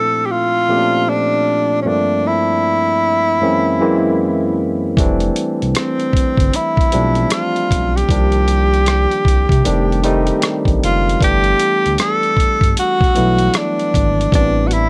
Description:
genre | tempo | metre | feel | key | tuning
R&B, neo-soul | 77 BPM | 4/4 | swing 60% on 16ths | unclear | A4 = 439 Hz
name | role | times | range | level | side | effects
breathy tenor saxophone | melody | 0.0-14.9 s | C4 to A4 | -19 LUFS | equal | tape echo
barky tine electric piano | accompaniment | 0.0-14.9 s | F#2 to G4 | -21 LUFS | equal | none
smooth synth bass | bass | 5.0-14.9 s | F1 to C3 | -20 LUFS | equal | none
dusty soul sampler-style drum kit | drums | 5.0-14.9 s | hi-hat, kick drum, rim click | -19 LUFS | equal | none
room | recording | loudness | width
little or no reverb | none | -15 LUFS | mono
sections
0.0-14.9 A section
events
none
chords
0.0 Bbmaj7; 1.9 Gm7; 3.4 F#9; 5.0 Fmaj9; 8.1 Cm7; 9.6 F9; 11.2 Gmaj7; 14.3 Am7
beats
0.30 1.08 | 1.86 2.64 3.42 4.20 | 4.97 5.75 6.53 7.31 | 8.09 8.87 9.65 10.43 | 11.21 11.99 12.77 13.54 | 14.32

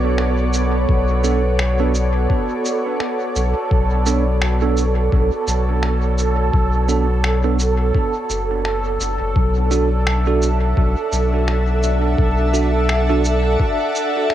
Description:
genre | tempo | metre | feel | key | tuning
ambient dub | 85 BPM | 4/4 | swing 58% on 16ths | B minor | A4 = 440 Hz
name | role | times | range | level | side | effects
soft additive organ-like pad | sustained chords | 0.0-14.3 s | B3 to F#5 | -23 LUFS | equal | ensemble chorus, built-in reverb
warm sub bass | bass | 0.0-13.6 s | F#1 to B1 | -18 LUFS | left 1 dB | none
bubbling stepped-filter texture | texture | 0.0-14.3 s | A4 | -24 LUFS | right 3 dB | chorus, built-in reverb
electronic finger snaps and cabasa | drums | 0.2-14.3 s | none | -26 LUFS | equal | small room ambience, cassette tape, dub echo
electronic kick drum | drums | 0.9-13.8 s | none | -18 LUFS | left 1 dB | small room ambience, cassette tape
bell-like tine electric piano | stabs | 1.2-13.2 s | B3 to A4 | -25 LUFS | right 8 dB | vintage 12-bit sampler grit, dub echo
room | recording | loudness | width
light reverb | home recording on cassette | -16 LUFS | side -12 dB against mid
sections
0.0-14.3 A section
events
none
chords
0.0 Bm7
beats
0.18 | 0.89 1.60 2.30 3.01 | 3.71 4.42 5.12 5.83 | 6.54 7.24 7.95 8.65 | 9.36 10.07 10.77 11.48 | 12.18 12.89 13.60 14.30

